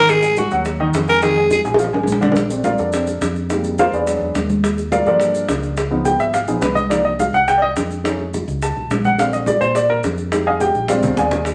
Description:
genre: Afro-Cuban jazz.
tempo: 211 BPM.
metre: 4/4.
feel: straight.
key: Bb major.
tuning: A4 = 443 Hz.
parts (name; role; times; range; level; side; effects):
growling tenor saxophone; melody; 0.0-1.6 s; Gb4 to Bb4; -16 LUFS; equal; none.
warm baby grand piano; accompaniment; 0.0-11.4 s; D3 to A5; -20 LUFS; equal; none.
fingered electric bass; bass; 0.0-11.5 s; Ab1 to Bb2; -28 LUFS; equal; none.
bongos; percussion; 0.1-11.5 s; none; -25 LUFS; equal; none.
congas; percussion; 0.1-11.5 s; none; -28 LUFS; equal; none.
maracas; percussion; 0.1-11.5 s; none; -39 LUFS; equal; none.
room: wet large studio reverb, RT60 0.9 s.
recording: none.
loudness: -18 LUFS.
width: mono.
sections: 0.0-2.4 A section; 2.4-11.5 A section.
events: tenor saxophone solo 0.0-2.4; drum fill 1.6-2.4, 10.9-11.5; grand piano solo 2.4-11.5.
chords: 0.1 Ab5; 1.2 Fm7; 1.8 Bb7; 2.4 Bbmaj7; 3.5 Fm11; 4.1 E9; 4.6 Ebmaj9#11; 5.8 Db9; 6.9 Cm11; 8.1 Faug7; 9.2 Bbmaj7; 10.3 Fm7; 10.9 Bb13.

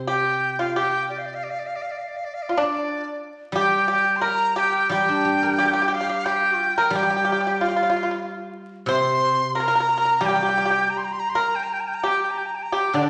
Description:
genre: chinese traditional, Chinese chamber ensemble.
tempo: 89 BPM.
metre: 4/4.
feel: rubato.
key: unclear.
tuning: A4 = 440 Hz.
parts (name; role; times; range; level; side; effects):
guzheng; accompaniment; 0.0-13.1 s; C3 to D5; -30 LUFS; equal; none.
bright dizi; melody; 0.1-13.1 s; D5 to C6; -25 LUFS; equal; none.
pipa; second line; 0.1-13.1 s; D4 to C5; -26 LUFS; equal; none.
room: wet recital hall reverb, RT60 1.6 s.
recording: vinyl crackle, nothing above 10.9 kHz.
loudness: -22 LUFS.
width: mono.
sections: 0.0-3.5 A section; 3.5-13.1 B section.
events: none.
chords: none.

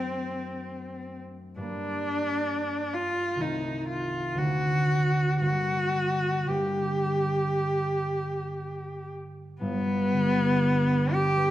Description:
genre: classical, romantic duo for cello and harp.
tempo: 56-68 BPM.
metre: 4/4.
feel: rubato.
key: G minor.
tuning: A4 = 440 Hz.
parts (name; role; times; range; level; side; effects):
rich cello; melody; 0.0-11.5 s; B3 to G4; -28 LUFS; equal; none.
concert harp; accompaniment; 0.0-11.5 s; G1 to D4; -29 LUFS; right 1 dB; none.
room: wet recital hall reverb, RT60 1.6 s.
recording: none.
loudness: -25 LUFS.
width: side -13 dB against mid.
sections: 0.0-9.6 A section; 9.6-11.5 B section.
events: none.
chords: 0.0 D7/F#; 1.6 Gm; 3.4 Adim/C; 4.4 D; 5.4 Gm; 9.6 G.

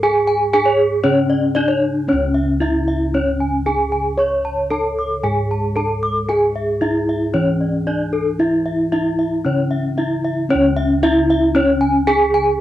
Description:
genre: Balinese gamelan.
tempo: 114 BPM.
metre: 4/4.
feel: straight.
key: C# pelog.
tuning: A4 = 440 Hz.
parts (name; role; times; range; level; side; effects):
gamelan-type bronze metallophone; melody; 0.0-12.6 s; C#4 to C#5; -18 LUFS; equal; none.
gamelan-type bronze metallophone; arpeggios; 0.0-12.5 s; A4 to D6+35c; -21 LUFS; left 1 dB; cassette tape.
gamelan-type bossed gongs; bass; 0.0-12.6 s; C#2 to C#5; -21 LUFS; equal; tube saturation.
room: moderate small room ambience, RT60 0.5 s.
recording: home recording on cassette.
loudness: -15 LUFS.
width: side -13 dB against mid.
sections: 0.0-2.1 A section; 2.1-12.6 B section.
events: none.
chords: none.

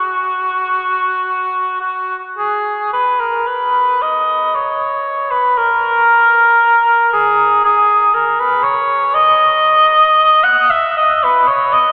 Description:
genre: classical, free, expressive piece for unaccompanied cor anglais.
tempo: 58 BPM.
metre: 3/4.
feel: uneven beats, rubato.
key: unclear.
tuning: A4 = 441 Hz.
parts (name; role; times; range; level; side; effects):
mellow cor anglais; solo; 0.0-11.9 s; F#4 to F#5; -13 LUFS; equal; none.
room: wet cathedral reverb, RT60 5.2 s.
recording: heard from further back in the room, telephone sound.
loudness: -13 LUFS.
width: mono.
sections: 0.0-11.9 A section.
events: none.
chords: none.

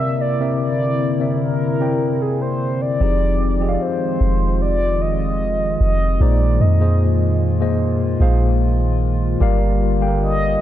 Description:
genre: contemporary R&B.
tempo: 75 BPM.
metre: 4/4.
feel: straight.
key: F dorian.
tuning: A4 = 442 Hz.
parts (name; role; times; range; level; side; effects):
mellow horn-like synth lead; melody; 0.0-10.6 s; Ab4 to E5; -23 LUFS; equal; chorus, tape echo.
mellow tine electric piano; accompaniment; 0.0-10.6 s; Bb2 to G5; -21 LUFS; left 1 dB; slow stereo tremolo.
hollow soft pad; sustained chords; 0.0-10.6 s; D3 to F4; -25 LUFS; left 1 dB; chorus.
soft 808-style bass; bass; 3.0-10.6 s; F1 to F2; -18 LUFS; equal; none.
room: light reverb, digital ambience.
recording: dark, warm production.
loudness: -16 LUFS.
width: side -12 dB against mid.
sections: 0.0-10.6 A section.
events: none.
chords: 0.0 C9; 3.0 Fm7; 6.2 Bb7sus4; 9.4 Gm7.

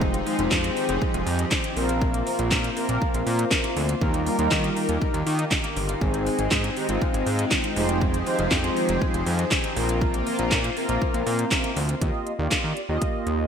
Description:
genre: dance-pop.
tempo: 120 BPM.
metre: 4/4.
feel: straight.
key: Eb major.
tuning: A4 = 438 Hz.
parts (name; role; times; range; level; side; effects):
mellow synth brass; accompaniment; 0.0-13.5 s; G3 to Eb5; -27 LUFS; equal; chorus, sidechain pumping.
soft supersaw; sustained chords; 0.0-12.0 s; Eb3 to Bb4; -30 LUFS; equal; analog chorus, sidechain pumping.
guzheng; arpeggios; 0.0-13.5 s; C3 to Eb5; -33 LUFS; left 6 dB; sidechain pumping, digital delay.
fat analog bass; bass; 0.0-13.4 s; F1 to Eb3; -26 LUFS; equal; sidechain pumping.
house drum kit; drums; 0.0-13.4 s; handclaps, hi-hat, kick drum, snare drum; -25 LUFS; equal; gated reverb.
room: moderate lush hall reverb, RT60 1.9 s, digital ambience.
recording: bright 1980s-style digital production.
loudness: -21 LUFS.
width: side -7 dB against mid.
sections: 0.0-12.0 A section; 12.0-13.5 B section.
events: none.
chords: 0.0 Fm7; 1.8 Bbsus2; 4.0 Ebadd9; 6.0 Ab; 7.8 Fm7; 9.8 Bbsus2; 12.0 Ebadd9.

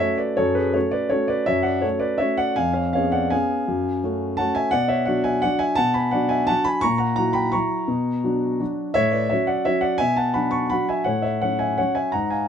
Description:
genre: classical, piano waltz.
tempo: 169 BPM.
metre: 3/4.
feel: uneven beats, rubato.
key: F# minor.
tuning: A4 = 440 Hz.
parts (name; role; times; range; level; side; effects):
dark concert grand piano; solo; 0.0-12.5 s; E#2 to C#6; -19 LUFS; equal; none.
room: light reverb.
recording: close, detailed microphones.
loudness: -19 LUFS.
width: side -8 dB against mid.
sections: 0.4-12.5 A section.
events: none.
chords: 0.4 F#m; 2.6 C#7/E#; 3.7 F#m; 4.7 Bm; 6.8 F#7/A#; 7.9 Bm; 9.0 F#m/A; 10.0 Bm; 11.1 F#m/A.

